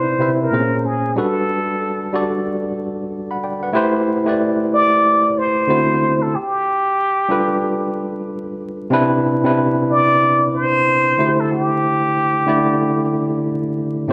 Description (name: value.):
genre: R&B.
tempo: 93 BPM.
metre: 4/4.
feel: swing 63% on 16ths.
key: unclear.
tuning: A4 = 438 Hz.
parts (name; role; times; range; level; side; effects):
trumpet with plunger mute; melody; 0.0-13.4 s; G4 to D5; -20 LUFS; equal; none.
tine electric piano; accompaniment; 0.0-14.1 s; A2 to B5; -20 LUFS; equal; overdrive.
room: light reverb, small room ambience.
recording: vinyl crackle, faint mains hum.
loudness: -18 LUFS.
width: mono.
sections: 0.0-3.8 A section; 3.8-14.1 B section.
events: none.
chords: 0.0 Cmaj7; 0.5 Bbm9; 1.2 Gmaj9; 3.8 Am7; 5.7 D9; 6.3 G9; 8.9 Cmaj9; 11.2 D9sus4.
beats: 0.53 | 1.17 1.82 2.46 3.11 | 3.75 4.40 5.04 5.69 | 6.33 6.98 7.62 8.27 | 8.91 9.56 10.20 10.85 | 11.49 12.14 12.78 13.43 | 14.07.